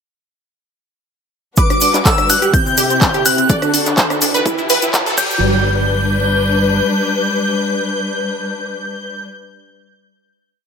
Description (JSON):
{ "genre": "progressive house", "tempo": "125 BPM", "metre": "4/4", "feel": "straight", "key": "G major", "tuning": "A4 = 440 Hz", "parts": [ { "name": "glassy synth bell", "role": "melody", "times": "1.6-9.2 s", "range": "D6 to G6", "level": "-20 LUFS", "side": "left 1 dB", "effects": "chorus, sidechain pumping, digital delay" }, { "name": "airy dreamy lead", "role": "second line", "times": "1.6-9.2 s", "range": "D6 to G6", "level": "-22 LUFS", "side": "equal", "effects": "chorus, sidechain pumping, ping-pong delay" }, { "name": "dark symphonic string section", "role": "sustained chords", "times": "1.6-9.2 s", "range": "C3 to B4", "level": "-20 LUFS", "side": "left 3 dB", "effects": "sidechain pumping" }, { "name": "wide unison pluck", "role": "arpeggios", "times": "1.6-9.2 s", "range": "C4 to D5", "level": "-19 LUFS", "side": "right 2 dB", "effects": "phaser, sidechain pumping, ping-pong delay" }, { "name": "plucky analog bass", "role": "bass", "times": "1.6-6.8 s", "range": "D1 to G2", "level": "-22 LUFS", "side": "equal", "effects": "sidechain pumping, high-pass filter" }, { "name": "deep house drum kit", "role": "drums", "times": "1.6-5.3 s", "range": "crash cymbal, handclaps, hi-hat, rim click", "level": "-18 LUFS", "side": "left 1 dB", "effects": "high-pass filter on hats, high-pass filter on snare, high-pass filter on cymbals, high-pass filter on room" }, { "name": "electronic kick drum", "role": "drums", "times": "1.6-5.3 s", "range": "none", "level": "-16 LUFS", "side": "equal", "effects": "overdrive" }, { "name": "cabasa", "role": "percussion", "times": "1.6-5.4 s", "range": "none", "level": "-22 LUFS", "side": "right 2 dB", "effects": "none" }, { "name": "riser", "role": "sound effects", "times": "3.2-5.4 s", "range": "none", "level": "-24 LUFS", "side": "right 2 dB", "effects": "none" } ], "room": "light reverb", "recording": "high-pass filter", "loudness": "-13 LUFS", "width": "side -6 dB against mid", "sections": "1.6-5.4 build; 5.4-9.3 final hit", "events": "build-up 1.6-5.4; filter sweep on synth pluck 1.6-5.4; riser 3.2-5.4", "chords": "1.6 Gmaj7; 2.5 C; 3.5 D; 4.5 Em; 5.2 G" }